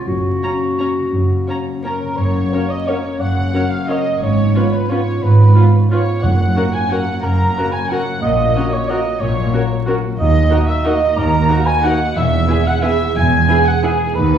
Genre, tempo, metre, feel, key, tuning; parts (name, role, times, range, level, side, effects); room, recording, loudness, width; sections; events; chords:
classical, orchestral ballroom waltz; 164-197 BPM; 3/4; rubato; F# major; A4 = 440 Hz
warm clarinet; second line; 0.0-2.0 s; F#4; -21 LUFS; left 1 dB
concert harp; arpeggios; 0.0-14.4 s; F#2 to D#5; -21 LUFS; left 3 dB
muted studio cello section; bass; 0.0-14.4 s; D#2 to A#2; -20 LUFS; right 2 dB
muted studio double bass section; bass; 0.0-14.4 s; E1 to D#2; -19 LUFS; right 3 dB
muted studio violin section; melody; 0.4-13.9 s; G#4 to A#5; -29 LUFS; left 1 dB
muted studio violin section; second line; 0.4-14.4 s; G#4 to A#5; -24 LUFS; right 1 dB
muted studio viola section; accompaniment; 0.4-13.9 s; B3 to A#4; -26 LUFS; equal
dark cor anglais; second line; 1.8-14.4 s; G#4 to G#5; -21 LUFS; right 2 dB
warm French horn section; sustained chords; 2.5-14.0 s; A#3 to G#4; -26 LUFS; right 2 dB
timpani; percussion; 6.2-6.7 s; F#2; -21 LUFS; right 1 dB
wet recital hall reverb, RT60 1.5 s; vinyl crackle, studio reverb; -13 LUFS; side -9 dB against mid
0.0-2.2 A section; 2.2-14.4 B section
0.1 F#; 4.2 C#7/G#; 6.2 F#; 8.2 F#/A#; 10.2 D#m; 12.2 E